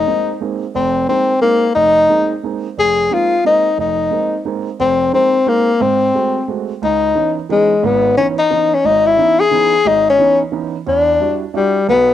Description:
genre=jazz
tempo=178 BPM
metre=3/4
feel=swing 63% on 8ths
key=unclear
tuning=A4 = 440 Hz
part: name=breathy tenor saxophone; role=melody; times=0.0-12.1 s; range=G3 to G#4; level=-12 LUFS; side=left 3 dB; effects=cassette tape
part: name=warm grand piano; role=accompaniment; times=0.0-12.1 s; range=F1 to Gb4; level=-21 LUFS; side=right 8 dB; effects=cassette tape
room=light reverb, small room ambience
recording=home recording on cassette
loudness=-12 LUFS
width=side -11 dB against mid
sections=0.0-6.8 A section; 6.8-12.1 B section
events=none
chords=0.0 Bb9sus4; 5.8 Ab7b9; 6.8 C#m9; 10.9 Em9

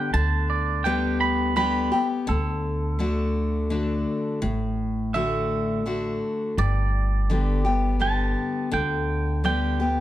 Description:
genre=honky-tonk and classic country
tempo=84 BPM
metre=3/4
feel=straight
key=D major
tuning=A4 = 440 Hz
part: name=twangy electric guitar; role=second line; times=0.0-10.0 s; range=A4 to B5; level=-28 LUFS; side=right 5 dB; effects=analog delay
part: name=picked steel-string acoustic guitar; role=accompaniment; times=0.0-10.0 s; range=G2 to G4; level=-25 LUFS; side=left 3 dB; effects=none
part: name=pedal steel guitar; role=sustained chords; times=0.0-2.3 s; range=D4 to B4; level=-45 LUFS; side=left 1 dB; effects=none
part: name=upright bass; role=bass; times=0.1-10.0 s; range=G1 to D2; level=-26 LUFS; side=equal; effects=none
room=light reverb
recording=dark, warm production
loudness=-22 LUFS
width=side -13 dB against mid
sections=0.0-2.3 A section; 2.3-10.0 B section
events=clean electric guitar solo 0.0-2.3, 2.3-10.0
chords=0.0 G; 2.3 D; 6.6 G

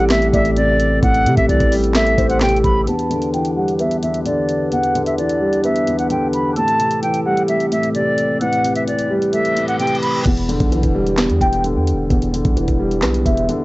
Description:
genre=hip hop, trap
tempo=130 BPM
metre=4/4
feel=half-time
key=E minor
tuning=A4 = 440 Hz
part: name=breathy silver concert flute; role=melody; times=0.0-10.2 s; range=D5 to B5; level=-19 LUFS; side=equal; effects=low-pass filter, cassette tape, analog delay
part: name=dark concert grand piano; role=accompaniment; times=0.0-13.6 s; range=E2 to B3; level=-19 LUFS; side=equal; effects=low-pass filter
part: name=chamber organ, stopped flute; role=sustained chords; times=0.0-10.2 s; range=E3 to B4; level=-23 LUFS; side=equal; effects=low-pass filter
part: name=long sustained 808-style bass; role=bass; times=0.0-2.9, 10.3-13.5 s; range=E1 to C3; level=-20 LUFS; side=equal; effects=none
part: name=trap drum kit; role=drums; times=0.1-13.6 s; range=crash cymbal, handclaps, hi-hat, kick drum, snare drum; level=-21 LUFS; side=equal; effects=cassette tape
part: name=warm velvety synth lead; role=second line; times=0.3-2.4, 11.4-13.5 s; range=C5 to G5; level=-22 LUFS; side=equal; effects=chorus, analog delay
part: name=reverse cymbal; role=sound effects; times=9.5-10.3 s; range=none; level=-27 LUFS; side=equal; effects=none
room=light reverb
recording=home recording on cassette, nothing above 7.9 kHz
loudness=-14 LUFS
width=side -20 dB against mid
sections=0.0-2.9 A section; 2.9-10.3 B section; 10.3-13.6 C section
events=filter sweep 2.9-10.3; reverse cymbal 9.5-10.3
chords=0.0 Am7; 2.9 Em7; 6.6 Am7; 10.3 Em7

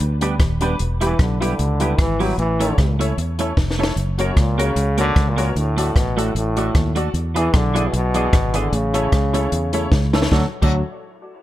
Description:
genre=ska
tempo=151 BPM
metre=4/4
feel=swing 55% on 8ths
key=D major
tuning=A4 = 441 Hz
part: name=clean electric guitar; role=accompaniment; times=0.0-10.7 s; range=E3 to A#4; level=-27 LUFS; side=right 5 dB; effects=analog chorus
part: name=fingered electric bass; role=bass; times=0.0-10.8 s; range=Eb1 to E2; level=-20 LUFS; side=equal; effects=none
part: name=compact cocktail drum kit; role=drums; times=0.0-10.7 s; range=crash cymbal, hi-hat, kick drum, rim click, snare drum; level=-20 LUFS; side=equal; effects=none
part: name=honky-tonk upright piano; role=stabs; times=0.2-10.8 s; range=D4 to D5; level=-27 LUFS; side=left 3 dB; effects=dub echo
part: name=clear trombone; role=melody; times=1.0-10.8 s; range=F#2 to F#3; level=-23 LUFS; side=equal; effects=none
room=light reverb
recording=dark, warm production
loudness=-16 LUFS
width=side -14 dB against mid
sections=0.0-10.3 A section; 10.3-11.4 B section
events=drum fill 3.6-4.0, 9.9-10.3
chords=0.0 G; 0.8 Em; 2.4 A; 4.0 F#; 5.6 D; 7.1 E7; 8.7 A; 10.3 D

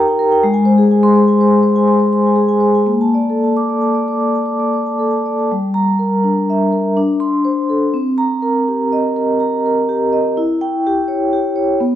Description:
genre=classical, contemporary piece for solo vibraphone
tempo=114-127 BPM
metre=5/4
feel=rubato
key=G minor from 5.5 s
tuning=A4 = 437 Hz
part: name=vibraphone with medium mallets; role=solo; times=0.0-12.0 s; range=G3 to D6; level=-13 LUFS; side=equal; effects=none
room=moderate recital hall reverb, RT60 1.4 s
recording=dark, warm production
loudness=-13 LUFS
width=side -11 dB against mid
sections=0.0-5.5 A section; 5.5-12.0 B section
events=none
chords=0.4 Ab; 2.9 Bbmaj7; 5.5 Gm6; 7.0 D5; 7.9 Cm7; 10.4 Em6

